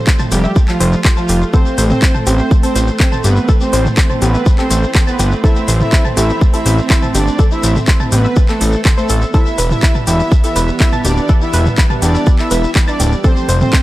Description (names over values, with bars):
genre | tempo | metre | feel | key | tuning
melodic techno | 123 BPM | 4/4 | straight | A minor | A4 = 439 Hz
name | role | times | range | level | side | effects
dark studio string section | sustained chords | 0.0-13.8 s | E3 to C4 | -22 LUFS | right 2 dB | sidechain pumping
woody wave-folded pluck | arpeggios | 0.1-13.8 s | G4 to A6 | -23 LUFS | equal | chorus, sidechain pumping, tape echo
electronic kick drum | drums | 0.1-13.8 s | none | -12 LUFS | equal | none
house drum kit | drums | 0.1-13.8 s | handclaps, hi-hat, toms | -19 LUFS | equal | overdrive, sidechain pumping on hats, sidechain pumping on toms
shekere | percussion | 0.1-13.8 s | none | -28 LUFS | left 4 dB | tape echo
expressive portamento lead | melody | 0.3-13.8 s | F3 to E4 | -20 LUFS | equal | chorus, sidechain pumping, tape echo
soft supersaw | second line | 0.3-13.8 s | F4 to E5 | -25 LUFS | right 1 dB | sidechain pumping, tape echo
fat analog bass | bass | 0.3-13.6 s | D1 to A1 | -13 LUFS | equal | sidechain pumping
room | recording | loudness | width
light reverb | echo-heavy mix | -10 LUFS | side -16 dB against mid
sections
0.0-13.8 A section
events
none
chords
0.0 Fadd9; 1.5 Am; 9.3 Em; 13.2 Fadd9